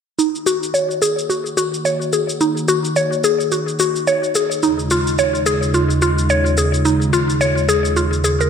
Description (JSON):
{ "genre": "organic downtempo", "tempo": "108 BPM", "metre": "4/4", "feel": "swing 59% on 16ths", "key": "Eb minor", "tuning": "A4 = 440 Hz", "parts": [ { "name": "warm analog pad", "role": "sustained chords", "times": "0.2-8.5 s", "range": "Eb2 to Gb4", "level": "-20 LUFS", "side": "right 1 dB", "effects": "lush chorus" }, { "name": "mallet-like synth pluck", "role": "arpeggios", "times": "0.2-8.5 s", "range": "Eb4 to Db5", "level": "-17 LUFS", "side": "left 1 dB", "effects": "chorus, ping-pong delay" }, { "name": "shaker", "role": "drums", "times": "0.2-8.5 s", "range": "none", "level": "-25 LUFS", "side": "left 1 dB", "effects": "overdrive" } ], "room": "moderate plate reverb, RT60 1.9 s", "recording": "bright 1980s-style digital production", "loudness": "-15 LUFS", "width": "side -7 dB against mid", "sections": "0.2-8.5 A section", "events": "filter sweep on synth pluck 0.2-8.5", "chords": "0.2 Ebm7; 4.6 Dbadd9/Eb" }